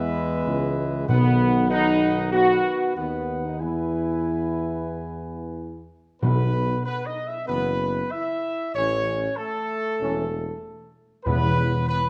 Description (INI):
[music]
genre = classical, ceremonial fanfare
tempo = 96 BPM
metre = 4/4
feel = straight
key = unclear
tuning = A4 = 440 Hz
[part]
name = dark trumpet section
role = melody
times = 0.0-12.1 s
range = A4 to G#5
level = -31 LUFS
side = equal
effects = none
[part]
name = mellow French horn section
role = sustained chords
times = 0.0-12.0 s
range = A3 to F#4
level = -28 LUFS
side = equal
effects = none
[part]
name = mellow trombone section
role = sustained chords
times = 0.0-11.5 s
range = D#3 to C#4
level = -34 LUFS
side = equal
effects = none
[part]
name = warm tuba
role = bass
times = 0.0-11.8 s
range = E1 to E2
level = -31 LUFS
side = equal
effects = none
[part]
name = timpani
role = percussion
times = 1.1-2.0, 6.2-7.1, 11.3-12.1 s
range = E2 to B2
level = -26 LUFS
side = equal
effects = none
[sound]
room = moderate recital hall reverb, RT60 1.3 s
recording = close, detailed microphones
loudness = -24 LUFS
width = mono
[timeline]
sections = 0.0-6.2 A section; 6.2-12.1 B section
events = none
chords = 0.0 E; 1.1 B; 3.6 E; 6.2 Bsus4; 8.8 A; 11.3 E5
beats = 0.47 | 1.09 1.71 2.33 2.96 | 3.60 4.26 4.91 5.57 | 6.22 6.86 7.48 8.13 | 8.76 9.38 10.01 10.63 | 11.26 11.89